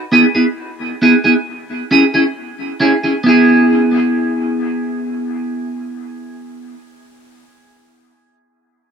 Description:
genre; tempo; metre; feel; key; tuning
reggae; 67 BPM; 4/4; straight; E major; A4 = 438 Hz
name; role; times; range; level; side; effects
clean electric guitar; accompaniment; 0.1-6.8 s; B3 to G#4; -13 LUFS; right 1 dB; lush chorus, dub echo
room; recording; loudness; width
moderate spring reverb, RT60 2.5 s; none; -12 LUFS; side -6 dB against mid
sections
0.0-3.3 A section; 3.3-6.8 B section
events
none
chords
0.0 E; 1.5 C#m; 3.3 E

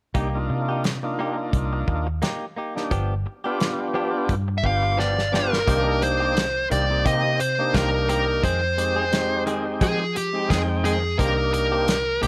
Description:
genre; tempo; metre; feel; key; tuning
straight-eighth soul blues; 87 BPM; 4/4; swing 55% on 16ths; C minor; A4 = 440 Hz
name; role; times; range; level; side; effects
tonewheel organ; accompaniment; 0.1-12.3 s; Ab3 to G5; -30 LUFS; equal; slow rotary speaker, overdrive
direct-recorded clean electric guitar; stabs; 0.1-12.3 s; Eb3 to Ab4; -33 LUFS; equal; none
vintage muted fingered electric bass; bass; 0.1-12.3 s; G1 to F3; -29 LUFS; equal; none
warm soul drum kit; drums; 0.1-12.3 s; hi-hat, kick drum, snare drum; -28 LUFS; equal; none
dark smooth lead guitar; melody; 4.6-12.3 s; G4 to F5; -25 LUFS; equal; overdrive
room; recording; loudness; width
little or no reverb; none; -23 LUFS; mono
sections
0.1-5.7 A section; 5.7-12.3 B section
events
tonewheel organ fill 4.3-5.7; drum fill 5.0-5.7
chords
0.1 Cm7; 2.9 G7; 5.7 Cm7; 8.4 Fm7; 11.2 Cm7

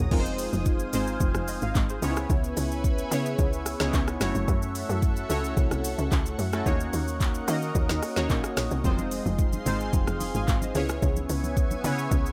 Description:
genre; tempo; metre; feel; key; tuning
amapiano; 110 BPM; 4/4; straight; F phrygian; A4 = 439 Hz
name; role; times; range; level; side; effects
warm analog keys; accompaniment; 0.0-12.3 s; Gb3 to C6; -33 LUFS; equal; chorus, phaser
lush unison pad; sustained chords; 0.0-12.3 s; Cb4 to Eb6; -39 LUFS; equal; chorus, phaser, sidechain pumping
tight log drum bass; bass; 0.0-12.3 s; F1 to Eb3; -32 LUFS; equal; none
afro-pop drum kit; drums; 0.1-12.3 s; crash cymbal, handclaps, hi-hat, kick drum, rim click, shaker, snare drum; -30 LUFS; equal; none
congas; percussion; 8.8-12.0 s; none; -39 LUFS; equal; none
room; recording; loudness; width
little or no reverb; none; -27 LUFS; mono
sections
0.0-12.3 A section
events
none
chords
0.1 Fm7; 2.0 Dbm7; 4.2 Gbm7; 6.7 Ebm7; 8.8 Fm7; 10.8 Dbm7

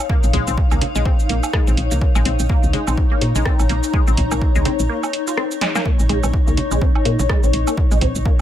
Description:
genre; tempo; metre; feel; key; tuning
minimal techno; 125 BPM; 4/4; swing 58% on 16ths; Bb minor; A4 = 440 Hz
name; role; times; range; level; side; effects
granular cloud pad; texture; 0.0-8.4 s; Eb4 to Bb5; -24 LUFS; left 4 dB; built-in reverb, sidechain pumping
resonant blip pluck; riff; 0.1-8.3 s; Ab3 to F4; -26 LUFS; equal; phaser, sidechain pumping, ping-pong delay
electronic kick drum; drums; 0.1-8.4 s; none; -17 LUFS; equal; none
woody FM bass; bass; 0.2-8.2 s; Bb1 to Bb2; -20 LUFS; equal; sidechain pumping
punchy analog drum machine; drums; 0.2-8.2 s; hi-hat, rim click, shaker, snare drum; -26 LUFS; right 1 dB; none
woodblock and congas; percussion; 0.7-7.8 s; none; -28 LUFS; right 6 dB; overdrive, digital delay
room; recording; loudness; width
light reverb; none; -15 LUFS; side -11 dB against mid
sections
0.0-8.4 A section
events
break 4.9-5.9; drum fill 5.6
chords
0.0 Bbm

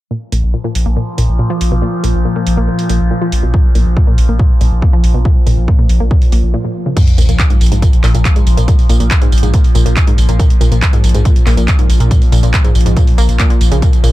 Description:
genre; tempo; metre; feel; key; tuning
driving peak-time techno; 140 BPM; 4/4; straight; unclear; A4 = 438 Hz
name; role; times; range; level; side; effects
wide unison pluck; riff; 0.1-14.1 s; Ab2 to Bb3; -18 LUFS; equal; overdrive, sidechain pumping, ping-pong delay
overtone-sweeping drone; drone; 0.7-14.1 s; Bb2 to F3; -21 LUFS; left 1 dB; chorus, built-in reverb, sidechain pumping
saturated sub bass; bass; 0.3-14.1 s; Bb1; -13 LUFS; equal; tube saturation, sidechain pumping, low-pass filter
techno drum kit; drums; 0.3-14.1 s; crash cymbal, handclaps, hi-hat, tambourine; -22 LUFS; right 2 dB; none
electronic kick drum; drums; 3.5-13.9 s; none; -11 LUFS; equal; none
sub drop; sound effects; 7.0-8.7 s; none; -19 LUFS; equal; none
room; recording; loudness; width
little or no reverb; dark, warm production; -9 LUFS; side -16 dB against mid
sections
0.1-7.0 A section; 7.0-14.1 B section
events
break 6.5-7.0; drop 7.0-14.1; impact 7.0-8.7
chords
0.1 Bb5

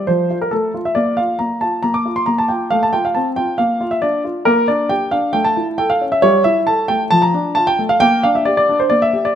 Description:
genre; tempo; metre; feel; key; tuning
classical-period piano sonatina; 136 BPM; 4/4; rubato; unclear; A4 = 441 Hz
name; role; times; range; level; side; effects
warm baby grand piano; solo; 0.0-9.3 s; F3 to D6; -14 LUFS; equal; none
room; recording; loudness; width
moderate recital hall reverb, RT60 1.7 s; close, detailed microphones; -14 LUFS; side -9 dB against mid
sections
0.0-9.3 A section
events
none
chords
0.1 F; 1.0 Bb5; 2.7 F/A; 3.6 Bb; 4.5 Gm/Bb; 5.3 A; 6.2 A5/G; 7.1 Dm/F; 8.0 Gm/Bb

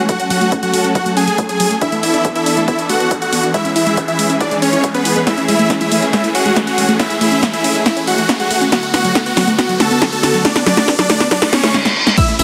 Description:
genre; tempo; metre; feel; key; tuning
uplifting trance; 139 BPM; 4/4; straight; unclear; A4 = 440 Hz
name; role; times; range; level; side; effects
dark studio string section; sustained chords; 0.0-12.4 s; C#3 to A4; -23 LUFS; equal; sidechain pumping
unison pluck; arpeggios; 0.0-12.4 s; F#3 to E4; -23 LUFS; equal; sidechain pumping, tape echo
riser, reverse cymbal and downlifter; sound effects; 1.5-12.4 s; none; -26 LUFS; equal; none
supersaw chords; melody; 0.1-12.4 s; B3 to A5; -19 LUFS; equal; sidechain pumping, tape echo
electronic kick drum; drums; 0.1-12.3 s; none; -21 LUFS; equal; high-pass filter on kick
punchy analog drum machine; drums; 0.1-12.4 s; crash cymbal, hi-hat, ride cymbal, snare drum; -20 LUFS; equal; sidechain pumping on hats, sidechain pumping on cymbals
unison pluck; second line; 12.2-12.4 s; E6; -21 LUFS; equal; sidechain pumping
tambourine; percussion; 12.2-12.4 s; none; -26 LUFS; equal; none
plucky analog bass; bass; 12.4 s; A1; -20 LUFS; equal; tube saturation, sidechain pumping
room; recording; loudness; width
light reverb; none; -14 LUFS; mono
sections
0.0-12.2 A section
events
build-up 0.0-12.2; filter sweep on synth arpeggio sound 0.0-12.2; riser 1.5-11.7; drum fill 5.3-11.7, 11.7-12.2; reverse cymbal 11.3-12.2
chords
0.1 F#m; 1.8 E7sus4; 3.5 C#m; 5.3 Amaj7; 8.7 D6

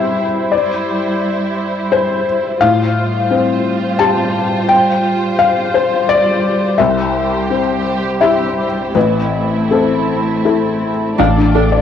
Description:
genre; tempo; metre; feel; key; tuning
neoclassical piano and strings; 86 BPM; 3/4; rubato; unclear; A4 = 440 Hz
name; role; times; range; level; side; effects
felt-muted upright piano; accompaniment; 0.0-11.8 s; A1 to A5; -14 LUFS; left 4 dB; cassette tape
warm studio string section; sustained chords; 0.0-11.8 s; G3 to D5; -18 LUFS; right 2 dB; cassette tape
rich viola; accompaniment; 11.2-11.6 s; D4; -19 LUFS; right 13 dB; cassette tape
pure sine sub bass; bass; 11.2-11.8 s; A1; -15 LUFS; right 3 dB; none
room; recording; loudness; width
moderate spring reverb, RT60 1.3 s; home recording on cassette; -12 LUFS; side -8 dB against mid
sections
0.0-11.2 A section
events
none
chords
0.0 C/G; 2.6 Fadd9/A; 6.8 C; 9.0 Am; 11.2 Dm/A

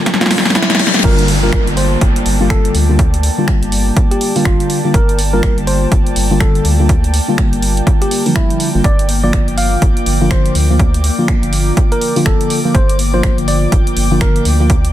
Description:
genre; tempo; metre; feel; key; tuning
deep house; 123 BPM; 4/4; swing 61% on 16ths; G minor; A4 = 441 Hz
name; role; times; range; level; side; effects
airy breathy pad; sustained chords; 0.0-14.9 s; Bb3 to D6; -23 LUFS; right 1 dB; chorus, sidechain pumping
mellow FM electric piano; stabs; 0.0-14.7 s; D3 to F4; -17 LUFS; left 1 dB; chorus, sidechain pumping
riser, reverse cymbal and downlifter; sound effects; 0.0-4.9 s; none; -21 LUFS; left 2 dB; none
electronic kick drum; drums; 0.1-14.8 s; none; -13 LUFS; equal; overdrive, high-pass filter on kick
punchy analog drum machine; drums; 0.1-14.9 s; crash cymbal, finger snaps, hi-hat, snare drum; -19 LUFS; equal; overdrive, soft clipping on snare
tine electric piano; melody; 0.2-14.4 s; E4 to F5; -21 LUFS; equal; tape echo
round analog bass; bass; 0.5-14.9 s; G1 to D2; -16 LUFS; equal; tube saturation, sidechain pumping, high-pass filter
room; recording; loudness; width
light reverb, digital ambience; dense, heavily limited modern master; -11 LUFS; side -12 dB against mid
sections
0.0-1.0 A section; 1.0-14.9 B section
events
build-up 0.0-1.0; drum fill 0.0-1.0; riser 0.0-1.0; filter sweep on tine electric piano 0.0-1.0; reverse cymbal 0.1-1.0; drop 1.0-14.9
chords
0.0 Gm7; 8.8 Bb/G

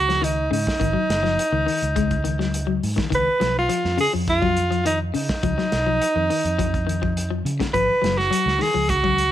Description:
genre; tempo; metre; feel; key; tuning
afrobeat; 104 BPM; 4/4; straight; unclear; A4 = 445 Hz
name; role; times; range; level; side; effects
bright alto saxophone; melody; 0.0-9.3 s; D#4 to B4; -21 LUFS; right 1 dB; plate reverb
fingered electric bass; bass; 0.0-9.3 s; F#1 to C#3; -25 LUFS; right 1 dB; none
electric guitar at the edge of break-up; arpeggios; 0.1-9.2 s; C#3 to G#3; -27 LUFS; left 9 dB; spring reverb
crunchy breakbeat drum kit; drums; 0.1-9.3 s; hi-hat, kick drum, snare drum; -28 LUFS; right 1 dB; none
room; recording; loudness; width
light reverb; none; -19 LUFS; side -12 dB against mid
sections
0.0-9.3 A section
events
none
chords
0.0 G#5; 3.1 C#; 7.7 N.C.

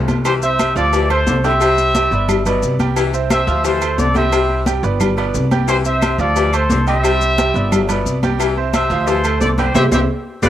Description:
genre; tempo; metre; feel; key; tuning
latin, salsa; 177 BPM; 4/4; straight; unclear; A4 = 438 Hz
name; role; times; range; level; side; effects
bright upright piano; accompaniment; 0.0-10.5 s; F3 to G5; -22 LUFS; right 7 dB; cassette tape
upright bass; bass; 0.0-10.5 s; G1 to D2; -19 LUFS; equal; none
agogo bells and timbales; percussion; 0.1-10.5 s; none; -26 LUFS; right 9 dB; none
congas; percussion; 0.1-10.5 s; none; -21 LUFS; left 1 dB; none
cowbell and bongos; percussion; 0.1-10.5 s; none; -24 LUFS; left 8 dB; none
maracas; percussion; 0.1-10.5 s; none; -32 LUFS; left 9 dB; none
warm trumpet section; melody; 0.3-10.5 s; G4 to E5; -18 LUFS; equal; cassette tape
bright saxophone section; second line; 0.3-10.5 s; G2 to E3; -26 LUFS; left 8 dB; cassette tape
claves; percussion; 0.3-10.5 s; none; -31 LUFS; left 8 dB; none
room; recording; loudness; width
light reverb, studio reverb; home recording on cassette; -13 LUFS; side -11 dB against mid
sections
0.2-10.5 A section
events
drum fill 0.0, 9.8-10.5; band accent 9.8-10.5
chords
0.2 G; 3.0 C; 3.6 Dm7; 4.3 G; 8.4 C; 9.1 Dm7; 9.8 C

